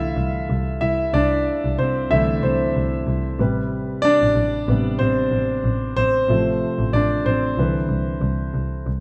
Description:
piano-driven pop; 93 BPM; 4/4; swing 56% on 16ths; C major; A4 = 440 Hz
warm grand piano; accompaniment; 0.0-8.9 s; C3 to F5; -22 LUFS; equal
bright double bass; bass; 0.0-9.0 s; A1 to C2; -25 LUFS; equal
moderate plate reverb, RT60 2.7 s; rough home demo mix; -21 LUFS; mono
0.0-8.9 A section
grand piano solo 0.0-8.9
0.0 C6; 3.4 Am7; 6.3 F/A; 7.6 Cmaj7

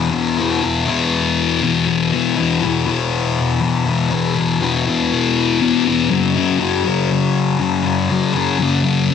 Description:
rock; 120 BPM; 4/4; straight; A4 = 440 Hz
thick fuzz guitar; solo; 0.0-9.1 s; E2 to F#3; -15 LUFS; left 5 dB; distortion, phaser
moderate echo chamber reverb, RT60 2.3 s; -15 LUFS; side -7 dB against mid
0.0-9.1 A section
0.0 E5; 6.1 F#5

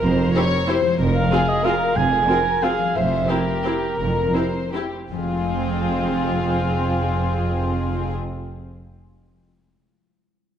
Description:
classical; 148-200 BPM; 3/4; rubato; F minor; A4 = 440 Hz
mellow cor anglais; second line; 0.0-8.1 s; F4 to Ab5; -24 LUFS; right 2 dB
warm studio violin section; second line; 0.0-8.1 s; F4 to Db5; -26 LUFS; left 4 dB
concert harp; arpeggios; 0.0-9.0 s; F3 to C5; -30 LUFS; left 4 dB
warm studio cello section; bass; 0.0-8.1 s; F2; -26 LUFS; right 2 dB
warm studio double bass section; bass; 0.0-8.1 s; F1; -26 LUFS; right 2 dB
rich studio violin section; melody; 0.3-8.1 s; G4 to Ab4; -31 LUFS; left 6 dB
warm studio viola section; accompaniment; 0.3-8.1 s; C4 to F4; -28 LUFS; equal
wet recital hall reverb, RT60 1.8 s; dark, warm production, nothing above 10.9 kHz; -18 LUFS; side -9 dB against mid
0.0-5.1 A section; 5.1-7.4 B section
slowing down 2.5-5.1
0.0 C7/F; 1.0 Fm; 3.0 C7/F; 5.1 Fm

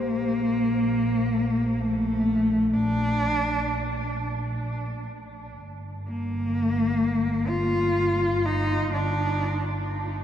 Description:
ambient; free time; Bb major; A4 = 440 Hz
rich cello; melody; 0.0-9.9 s; A3 to F4; -24 LUFS; left 1 dB; tape echo
dark studio double bass section; bass; 0.0-10.2 s; G1 to Bb1; -29 LUFS; right 1 dB
wet cathedral reverb, RT60 7.3 s; dark, warm production; -22 LUFS; side -10 dB against mid
0.0-10.2 A section
0.0 Bb; 5.6 Gm7

